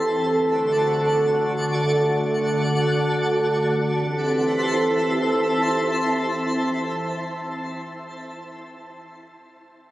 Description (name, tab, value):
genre	hip hop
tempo	free time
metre	none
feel	none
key	C lydian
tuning	A4 = 440 Hz
part	warbly tape-like pad	sustained chords	0.0-8.2 s	D3 to A4	-21 LUFS	right 1 dB	chorus, built-in reverb, low-pass filter
part	twinkling granular texture	texture	0.0-8.2 s	E4 to A5	-26 LUFS	equal	built-in reverb
room	moderate shimmer reverb, RT60 5.9 s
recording	recorded on a phone in the room, club reverb, compression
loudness	-19 LUFS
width	side -15 dB against mid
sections	0.0-3.9 A section; 3.9-7.4 B section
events	filter sweep on ambient pad 0.0-3.9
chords	0.3 D; 3.9 C6